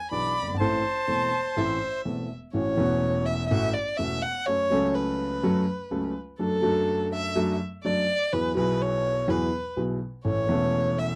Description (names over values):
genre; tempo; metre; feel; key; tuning
tango; 124 BPM; 4/4; rubato; A major; A4 = 440 Hz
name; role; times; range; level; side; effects
warm violin; second line; 0.0-11.2 s; A4 to B5; -30 LUFS; equal; none
bandoneon; melody; 0.1-2.0 s; C5 to D5; -30 LUFS; equal; none
warm grand piano; accompaniment; 0.1-11.2 s; E1 to A4; -29 LUFS; equal; none
room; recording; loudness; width
light reverb; dry, close 1970s-style studio recording; -26 LUFS; mono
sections
0.0-2.5 A section; 2.5-11.2 B section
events
violin solo 2.5-11.2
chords
0.0 E7; 0.6 Am; 2.5 A6; 4.5 F#m; 6.4 D/F#; 8.3 Eadd9; 10.2 A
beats
0.12 | 0.60 1.08 1.57 2.05 | 2.54 3.02 3.51 3.99 | 4.47 4.95 5.43 5.91 | 6.39 6.88 7.36 7.84 | 8.32 8.80 9.28 9.77 | 10.25 10.73